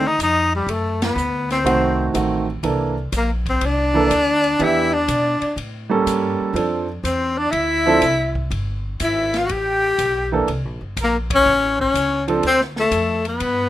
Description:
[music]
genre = jazz, small-group swing and bop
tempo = 122 BPM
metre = 4/4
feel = swing 68% on 8ths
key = C mixolydian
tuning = A4 = 440 Hz
[part]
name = breathy tenor saxophone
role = melody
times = 0.0-13.7 s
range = G3 to G4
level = -18 LUFS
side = left 3 dB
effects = none
[part]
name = warm trumpet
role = second line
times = 0.0-13.7 s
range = G4 to G5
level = -25 LUFS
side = right 3 dB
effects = none
[part]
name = upright bass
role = bass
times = 0.0-13.7 s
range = G1 to B2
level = -26 LUFS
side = equal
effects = none
[part]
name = open jazz drum kit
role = drums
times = 0.2-13.6 s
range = hi-hat, kick drum, ride cymbal, snare drum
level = -31 LUFS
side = left 1 dB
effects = none
[part]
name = warm concert grand piano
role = accompaniment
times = 1.6-12.4 s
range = D#3 to A4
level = -19 LUFS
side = right 4 dB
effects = none
[sound]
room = little or no reverb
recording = rough home demo mix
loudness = -17 LUFS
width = side -13 dB against mid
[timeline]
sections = 0.0-13.7 A section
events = band accent 0.9, 11.2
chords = 0.0 F7sus2; 0.7 F#dim7; 2.6 C13; 4.6 Em7; 5.6 A7b9; 6.6 Dm7; 8.5 G69; 10.5 C5; 11.5 A; 12.4 Dm

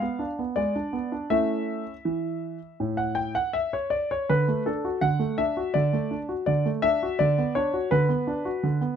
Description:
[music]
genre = classical-period piano sonatina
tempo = 82 BPM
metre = 4/4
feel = straight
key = D major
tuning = A4 = 440 Hz
[part]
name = clear grand piano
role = solo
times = 0.0-9.0 s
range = A2 to G5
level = -23 LUFS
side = equal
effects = none
[sound]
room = light reverb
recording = close, detailed microphones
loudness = -23 LUFS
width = side -8 dB against mid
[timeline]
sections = 0.0-9.0 A section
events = none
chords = 0.0 G#dim7; 1.3 A; 4.3 D; 7.2 Bm/D

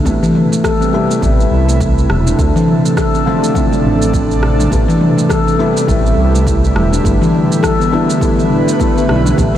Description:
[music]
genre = organic downtempo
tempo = 103 BPM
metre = 4/4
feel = swing 59% on 16ths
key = A minor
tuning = A4 = 441 Hz
[part]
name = felt-muted upright piano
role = accompaniment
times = 0.0-9.6 s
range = C3 to B4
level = -18 LUFS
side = left 3 dB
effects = analog chorus, sidechain pumping, tape echo
[part]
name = handpan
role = arpeggios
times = 0.0-9.6 s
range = E3 to A4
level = -15 LUFS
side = equal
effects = tape echo
[part]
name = airy breathy pad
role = sustained chords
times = 0.1-9.6 s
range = C3 to B4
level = -18 LUFS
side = right 1 dB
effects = chorus, sidechain pumping
[part]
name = smooth gliding synth bass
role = bass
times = 0.1-9.5 s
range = E1 to D2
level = -14 LUFS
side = equal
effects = none
[part]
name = deep house drum kit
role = drums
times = 0.1-9.5 s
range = rim click, shaker, toms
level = -23 LUFS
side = right 1 dB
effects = overdrive, studio reverb
[part]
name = electronic kick drum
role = drums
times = 0.1-9.5 s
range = none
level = -18 LUFS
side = equal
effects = overdrive, studio reverb
[part]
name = swell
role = sound effects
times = 8.8-9.4 s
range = none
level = -25 LUFS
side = left 2 dB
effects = none
[sound]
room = moderate huge ambient reverb, RT60 7.2 s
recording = dreamy mix soaked in reverb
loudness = -10 LUFS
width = side -11 dB against mid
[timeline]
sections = 0.0-9.4 A section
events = none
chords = 0.1 Am7; 2.4 Dm7; 4.7 Am7; 7.1 G6

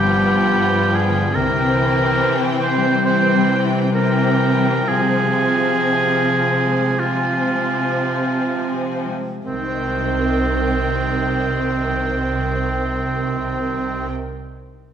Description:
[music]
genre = classical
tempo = 44-74 BPM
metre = 4/4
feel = rubato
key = C minor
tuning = A4 = 438 Hz
[part]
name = rich chamber violin section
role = melody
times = 0.0-14.1 s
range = G5 to Ab5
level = -30 LUFS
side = left 4 dB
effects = none
[part]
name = clear oboe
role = second line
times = 0.0-14.1 s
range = C4 to C5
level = -21 LUFS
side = right 2 dB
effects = none
[part]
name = rich studio violin section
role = second line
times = 0.0-14.1 s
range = B3 to C4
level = -25 LUFS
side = left 2 dB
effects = none
[part]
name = rich studio viola section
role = accompaniment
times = 0.0-14.1 s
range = Eb3 to F3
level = -26 LUFS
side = right 1 dB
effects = none
[part]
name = concert harp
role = arpeggios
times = 0.0-14.4 s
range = G2 to Eb5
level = -24 LUFS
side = left 5 dB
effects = none
[part]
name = rich chamber cello section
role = bass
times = 0.0-14.1 s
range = G2 to C3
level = -23 LUFS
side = right 3 dB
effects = none
[part]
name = rich chamber double bass section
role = bass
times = 0.0-2.1, 9.5-14.1 s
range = G1 to C2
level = -27 LUFS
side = right 3 dB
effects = none
[sound]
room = moderate scoring stage reverb, RT60 1.7 s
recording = none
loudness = -16 LUFS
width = side -8 dB against mid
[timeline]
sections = 0.0-9.5 A section; 9.5-14.2 B section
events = slowing down 0.0-9.5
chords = 0.0 G7; 1.4 C7; 4.9 Fm/C; 9.5 Cm

